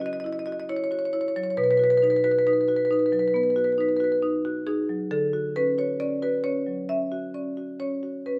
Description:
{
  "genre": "classical, contemporary piece for solo marimba",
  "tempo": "68 BPM",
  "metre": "4/4",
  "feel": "rubato",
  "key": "unclear",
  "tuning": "A4 = 440 Hz",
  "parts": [
    { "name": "marimba with medium mallets", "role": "solo", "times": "0.0-8.4 s", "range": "B2 to E5", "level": "-25 LUFS", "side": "equal", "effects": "none" }
  ],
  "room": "moderate stone room reverb, RT60 1.2 s",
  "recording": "none",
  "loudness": "-25 LUFS",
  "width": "mono",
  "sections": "0.0-8.4 A section",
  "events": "none",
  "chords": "0.0 C#madd9; 1.6 B; 5.1 Dmaj7"
}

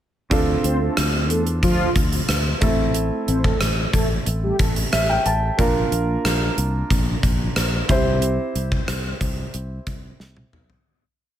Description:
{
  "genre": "1980s-style pop",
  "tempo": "91 BPM",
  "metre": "4/4",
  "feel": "straight",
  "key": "D minor",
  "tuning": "A4 = 440 Hz",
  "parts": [
    { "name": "warm baby grand piano", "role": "accompaniment", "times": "0.3-10.9 s", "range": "A3 to A5", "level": "-24 LUFS", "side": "right 2 dB", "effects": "none" },
    { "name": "fretless electric bass", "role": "bass", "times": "0.3-10.8 s", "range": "A1 to E2", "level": "-23 LUFS", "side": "equal", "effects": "none" },
    { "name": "gated 80s drum kit", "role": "drums", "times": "0.3-10.8 s", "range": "hi-hat, kick drum, rim click, snare drum, toms", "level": "-22 LUFS", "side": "equal", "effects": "gated reverb" },
    { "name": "mellow synth brass", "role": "stabs", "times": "0.6-4.7 s", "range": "F3 to C5", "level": "-25 LUFS", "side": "equal", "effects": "chorus, digital delay" }
  ],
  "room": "small room ambience",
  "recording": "none",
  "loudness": "-18 LUFS",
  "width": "side -11 dB against mid",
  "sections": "0.3-10.9 verse",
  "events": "grand piano fill 4.6-5.6; fade-out 8.2-10.9; drum fill 10.2-10.9",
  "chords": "0.3 Dm7; 2.6 Am; 5.6 Bb; 7.9 C"
}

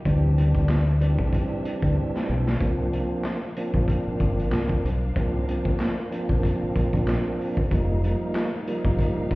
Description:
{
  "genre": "hip hop, boom-bap hip-hop",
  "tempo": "94 BPM",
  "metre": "4/4",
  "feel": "swing 57% on 16ths",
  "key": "unclear",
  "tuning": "A4 = 441 Hz",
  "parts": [
    { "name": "warm studio string section", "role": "sustained chords", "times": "0.0-9.4 s", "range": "D4 to F5", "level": "-39 LUFS", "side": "left 1 dB", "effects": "high-pass filter, low-pass filter" },
    { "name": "tonewheel organ", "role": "accompaniment", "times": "0.1-9.4 s", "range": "E3 to Eb4", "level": "-27 LUFS", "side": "right 1 dB", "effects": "overdrive, fast rotary speaker, cassette tape, high-pass filter, low-pass filter" },
    { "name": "deep dub fingered electric bass", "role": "bass", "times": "0.1-9.4 s", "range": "F1 to D2", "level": "-24 LUFS", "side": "equal", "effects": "none" },
    { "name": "raw garage drum kit", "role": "drums", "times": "0.1-9.4 s", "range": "handclaps, hi-hat, kick drum, snare drum", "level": "-26 LUFS", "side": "equal", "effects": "none" }
  ],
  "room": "little or no reverb",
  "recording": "heard muffled through a wall, stone room reverb, EQ",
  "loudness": "-22 LUFS",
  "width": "side -21 dB against mid",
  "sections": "0.0-2.6 A section; 2.6-9.4 B section",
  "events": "drum fill 2.0-2.6",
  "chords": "0.1 D9sus4; 2.6 C9sus4; 7.7 F9sus4"
}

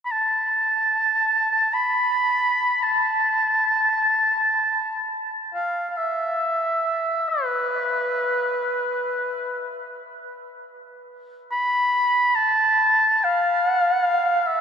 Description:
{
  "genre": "world meditative",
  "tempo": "free time",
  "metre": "none",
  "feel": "none",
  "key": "unclear",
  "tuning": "A4 = 441 Hz",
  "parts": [
    { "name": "warm oboe", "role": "solo", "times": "0.1-14.6 s", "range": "B4 to B5", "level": "-19 LUFS", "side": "equal", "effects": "ping-pong delay" }
  ],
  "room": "wet cathedral reverb, RT60 6.8 s",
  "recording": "dreamy mix soaked in reverb",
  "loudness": "-19 LUFS",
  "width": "side -7 dB against mid",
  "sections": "0.0-14.6 A section",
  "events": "none",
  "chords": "none"
}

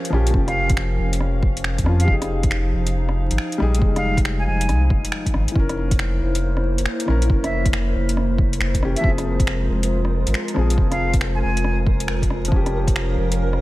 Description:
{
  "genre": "future garage",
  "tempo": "138 BPM",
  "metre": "4/4",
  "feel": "swing 64% on 16ths",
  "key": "unclear",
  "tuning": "A4 = 441 Hz",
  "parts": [
    { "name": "felt-muted upright piano", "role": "accompaniment", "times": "0.0-13.6 s", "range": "E3 to Bb4", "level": "-27 LUFS", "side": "left 2 dB", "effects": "vintage 12-bit sampler grit, sidechain pumping, digital delay" },
    { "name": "warbly tape-like pad", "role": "sustained chords", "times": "0.0-13.6 s", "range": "F3 to F5", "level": "-28 LUFS", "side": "equal", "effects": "chorus, built-in reverb, sidechain pumping" },
    { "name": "deep house drum kit", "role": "drums", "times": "0.0-13.6 s", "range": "finger snaps, hi-hat, rim click", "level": "-28 LUFS", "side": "equal", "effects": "overdrive" },
    { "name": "warm sub bass", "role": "bass", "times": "0.1-13.6 s", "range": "F1 to F2", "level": "-21 LUFS", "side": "equal", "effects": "sidechain pumping" },
    { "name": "electronic kick drum", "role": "drums", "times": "0.3-12.9 s", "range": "none", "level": "-21 LUFS", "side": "equal", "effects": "overdrive" },
    { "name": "breathy bright concert flute", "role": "melody", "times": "0.5-11.8 s", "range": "E5 to Ab5", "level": "-28 LUFS", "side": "right 1 dB", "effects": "vintage 12-bit sampler grit, tape echo" },
    { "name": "flickering grainy texture", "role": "texture", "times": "6.7-13.6 s", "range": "Bb4", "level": "-35 LUFS", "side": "equal", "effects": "built-in reverb" }
  ],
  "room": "digital ambience",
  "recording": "vinyl crackle",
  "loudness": "-18 LUFS",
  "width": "side -17 dB against mid",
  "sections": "0.0-5.6 A section; 5.6-13.6 A section",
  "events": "none",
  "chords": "0.0 Bbm6/F; 2.1 Fm9; 5.6 C7b9/F; 9.0 Ab6/F; 12.5 Bbm6/F"
}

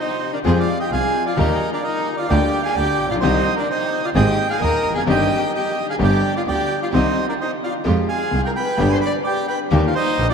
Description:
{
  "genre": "tango",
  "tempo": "130 BPM",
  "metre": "4/4",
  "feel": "rubato",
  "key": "C minor",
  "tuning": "A4 = 440 Hz",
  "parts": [
    { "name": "bandoneon", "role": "melody", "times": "0.0-10.3 s", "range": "Bb4 to D6", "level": "-22 LUFS", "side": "right 3 dB", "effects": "none" },
    { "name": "rich violin", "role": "second line", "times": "0.0-10.3 s", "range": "D4 to D5", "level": "-25 LUFS", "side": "left 3 dB", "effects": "none" },
    { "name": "bright baby grand piano", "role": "accompaniment", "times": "0.4-10.3 s", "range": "Eb1 to Ab4", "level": "-22 LUFS", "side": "left 4 dB", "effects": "none" },
    { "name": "clear studio string section", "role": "stabs", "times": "0.4-10.3 s", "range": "Ab3 to Ab4", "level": "-30 LUFS", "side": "right 4 dB", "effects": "none" },
    { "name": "clear double bass", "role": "bass", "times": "0.4-10.3 s", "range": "F1 to F2", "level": "-21 LUFS", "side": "right 2 dB", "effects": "none" }
  ],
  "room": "wet cathedral reverb, RT60 5.2 s",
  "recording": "in a vast, echoing space",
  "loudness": "-17 LUFS",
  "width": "side -6 dB against mid",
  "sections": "0.0-10.3 A section",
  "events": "none",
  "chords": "0.4 Fm; 1.4 Eb; 2.3 Bb6/D; 3.2 Cm; 4.1 Abadd9; 5.1 Cm/G; 6.0 G; 6.9 Cm; 7.9 Fmadd9; 8.8 G; 9.7 Eb"
}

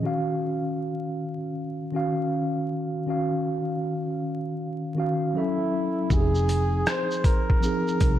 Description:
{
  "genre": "lo-fi hip hop",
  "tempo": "79 BPM",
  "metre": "4/4",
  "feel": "swing 64% on 16ths",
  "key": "Eb dorian",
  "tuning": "A4 = 440 Hz",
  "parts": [
    { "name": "mellow tine electric piano", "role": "accompaniment", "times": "0.0-8.2 s", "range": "Eb3 to F5", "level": "-26 LUFS", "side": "equal", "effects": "medium stereo tremolo, cassette tape, low-pass filter" },
    { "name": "mellow flugelhorn", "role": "melody", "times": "5.4-8.2 s", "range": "Fb4 to C5", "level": "-28 LUFS", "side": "right 1 dB", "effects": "low-pass filter, analog delay" },
    { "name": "vintage muted fingered electric bass", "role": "bass", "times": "6.1-8.2 s", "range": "F1 to C2", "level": "-25 LUFS", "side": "equal", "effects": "none" },
    { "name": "boom bap sampler-style drum kit", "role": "drums", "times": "6.1-8.2 s", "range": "hi-hat, kick drum, rim click, shaker", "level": "-23 LUFS", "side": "equal", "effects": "none" }
  ],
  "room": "wet plate reverb, RT60 2.0 s, digital ambience",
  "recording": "dreamy mix soaked in reverb, vinyl crackle",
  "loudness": "-24 LUFS",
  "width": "side -11 dB against mid",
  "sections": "0.0-6.1 A section; 6.1-8.2 B section",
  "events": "none",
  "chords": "0.0 Ebm9; 5.3 Gbm7; 6.1 Fm7"
}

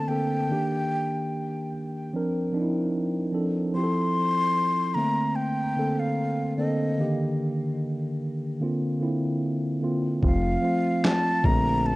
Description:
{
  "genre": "lo-fi hip hop",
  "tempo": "74 BPM",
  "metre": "4/4",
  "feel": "swing 58% on 16ths",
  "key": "F major",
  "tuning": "A4 = 440 Hz",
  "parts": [
    { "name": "breathy mellow silver concert flute", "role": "melody", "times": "0.0-12.0 s", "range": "Eb5 to C6", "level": "-28 LUFS", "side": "left 1 dB", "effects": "none" },
    { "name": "mellow tine electric piano", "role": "accompaniment", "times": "0.0-12.0 s", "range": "D3 to Bb4", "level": "-25 LUFS", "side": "equal", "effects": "medium stereo tremolo" },
    { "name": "smooth synth bass", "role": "bass", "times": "10.2-12.0 s", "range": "F1 to Bb1", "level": "-26 LUFS", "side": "equal", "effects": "none" },
    { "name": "boom bap sampler-style drum kit", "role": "drums", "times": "10.2-11.7 s", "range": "finger snaps, kick drum, snare drum", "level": "-24 LUFS", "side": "equal", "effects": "none" }
  ],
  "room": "light reverb, digital ambience",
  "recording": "rough home demo mix, cassette tape",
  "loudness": "-23 LUFS",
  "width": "side -20 dB against mid",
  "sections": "0.0-10.2 A section; 10.2-12.0 B section",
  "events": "hi-hats muted 10.2-12.0",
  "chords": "0.5 Ebmaj7; 2.1 C9sus4; 3.7 Fmaj7; 5.0 Bbmaj9; 7.0 Ebmaj7; 8.6 C9sus4; 10.2 F; 11.4 Bbmaj9"
}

